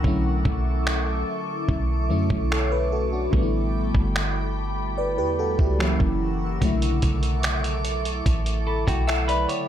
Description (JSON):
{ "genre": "contemporary R&B", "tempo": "73 BPM", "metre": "4/4", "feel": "straight", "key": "B minor", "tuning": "A4 = 439 Hz", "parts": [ { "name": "FM electric piano with soft pad layer", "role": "accompaniment", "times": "0.0-9.7 s", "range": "C#3 to B5", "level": "-26 LUFS", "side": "equal", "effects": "chorus, phaser" }, { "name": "glassy FM pad", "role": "sustained chords", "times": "0.0-9.7 s", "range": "A4 to E6", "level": "-31 LUFS", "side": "left 1 dB", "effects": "ensemble chorus, built-in reverb, sidechain pumping" }, { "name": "soft 808-style bass", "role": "bass", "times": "0.0-9.5 s", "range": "F#1 to F#2", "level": "-25 LUFS", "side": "equal", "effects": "none" }, { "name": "dusty soul sampler-style drum kit", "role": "drums", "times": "0.0-9.7 s", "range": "finger snaps, hi-hat, kick drum", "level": "-25 LUFS", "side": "equal", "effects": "none" }, { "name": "clean electric guitar", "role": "arpeggios", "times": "8.7-9.7 s", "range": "F#4 to C#5", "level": "-26 LUFS", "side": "equal", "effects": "none" } ], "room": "digital ambience", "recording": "none", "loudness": "-21 LUFS", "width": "side -10 dB against mid", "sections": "0.0-9.7 A section", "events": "FM electric piano fill 8.3-9.7", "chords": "0.0 Bm11; 3.3 A9sus4; 5.8 F#7; 6.6 Bm11", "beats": "| 0.04 0.86 1.68 2.50 | 3.33 4.15 4.97 5.79 | 6.61 7.44 8.26 9.08" }